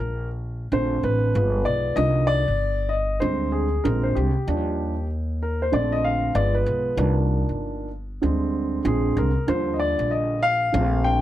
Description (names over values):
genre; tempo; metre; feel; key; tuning
hip hop, jazz-hop; 96 BPM; 4/4; swing 63% on 16ths; unclear; A4 = 439 Hz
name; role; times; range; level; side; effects
dark baby grand piano; accompaniment; 0.0-11.2 s; D3 to G5; -23 LUFS; equal; none
upright bass; bass; 0.0-11.2 s; G1 to Eb2; -24 LUFS; equal; none
room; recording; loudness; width
light reverb; none; -20 LUFS; side -13 dB against mid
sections
0.0-11.2 A section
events
grand piano solo 0.0-11.2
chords
0.0 N.C.; 0.7 Bbmaj9; 1.4 G7b9; 2.0 Cm11; 3.2 Abmaj7#11/D; 3.9 Bb9; 4.5 Ebmaj9; 5.7 Bbmaj9; 6.4 G7b9; 7.0 Cm11; 8.2 Abmaj7#11/D; 8.9 Bb9; 9.5 Ebmaj9